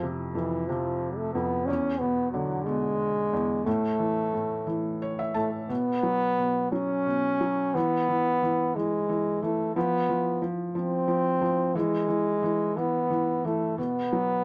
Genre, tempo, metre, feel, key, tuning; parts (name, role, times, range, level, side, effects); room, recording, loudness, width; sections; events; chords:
children's music, lullaby; 60 BPM (dotted quarters); 6/8; rubato; A4 = 440 Hz
clear trombone; melody; 0.0-14.4 s; E3 to C#4; -29 LUFS; equal
felt-muted upright piano; accompaniment; 0.0-14.4 s; E2 to A5; -32 LUFS; equal
light reverb; -27 LUFS; mono
0.0-5.7 A section; 5.7-14.4 B section
felt piano fill 4.7-5.7
0.0 F5; 1.7 E7; 3.7 A5; 5.7 B5; 7.7 N.C.; 13.8 B5